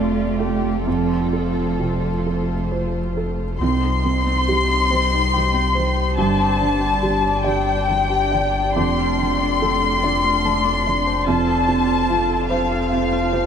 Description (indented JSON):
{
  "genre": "neoclassical piano and strings",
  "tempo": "43-49 BPM (dotted quarters)",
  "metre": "6/8",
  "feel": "rubato",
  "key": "C dorian",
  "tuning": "A4 = 435 Hz",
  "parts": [
    { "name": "warm chamber violin section", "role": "melody", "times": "0.0-13.5 s", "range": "F4 to C6", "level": "-21 LUFS", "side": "left 4 dB", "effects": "none" },
    { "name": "dark cello", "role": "second line", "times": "0.0-13.4 s", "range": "C3 to A3", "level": "-28 LUFS", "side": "right 4 dB", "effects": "none" },
    { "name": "felt-muted upright piano", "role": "accompaniment", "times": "0.0-13.5 s", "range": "C2 to A5", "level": "-23 LUFS", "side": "right 4 dB", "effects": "none" },
    { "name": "dark chamber string section", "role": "sustained chords", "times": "0.0-13.5 s", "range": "G3 to D5", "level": "-29 LUFS", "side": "left 1 dB", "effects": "none" },
    { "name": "sub bass with octave", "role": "bass", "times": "0.0-13.5 s", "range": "F1 to C2", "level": "-25 LUFS", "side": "equal", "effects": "none" },
    { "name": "Celtic harp", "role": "arpeggios", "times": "3.6-13.5 s", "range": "C4 to A5", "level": "-28 LUFS", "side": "left 3 dB", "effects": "tape echo" }
  ],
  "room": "wet huge ambient reverb, RT60 9.0 s",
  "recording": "in a vast, echoing space",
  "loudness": "-17 LUFS",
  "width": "side -7 dB against mid",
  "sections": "0.0-3.6 A section; 3.6-13.5 A section",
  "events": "none",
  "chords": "0.0 Dm7/F; 0.9 F; 3.6 Cm; 6.2 Gsus2; 8.8 Dm7/F; 11.3 F"
}